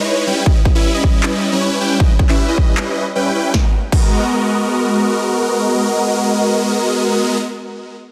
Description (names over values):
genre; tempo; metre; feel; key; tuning
future bass; 156 BPM; 4/4; half-time; G# minor; A4 = 442 Hz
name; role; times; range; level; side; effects
supersaw chords; riff; 0.0-7.4 s; G3 to G5; -18 LUFS; equal; phaser, sidechain pumping, digital delay
electronic kick drum; drums; 0.5-4.0 s; none; -16 LUFS; equal; none
big-room dance drum kit; drums; 1.2-4.0 s; crash cymbal, handclaps, snare drum; -26 LUFS; equal; none
room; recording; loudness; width
moderate digital room reverb, RT60 1.2 s, digital ambience; dense, heavily limited modern master; -16 LUFS; mono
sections
0.0-3.5 A section; 3.5-6.6 B section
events
none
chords
0.3 D#7b9b13; 3.5 G#m9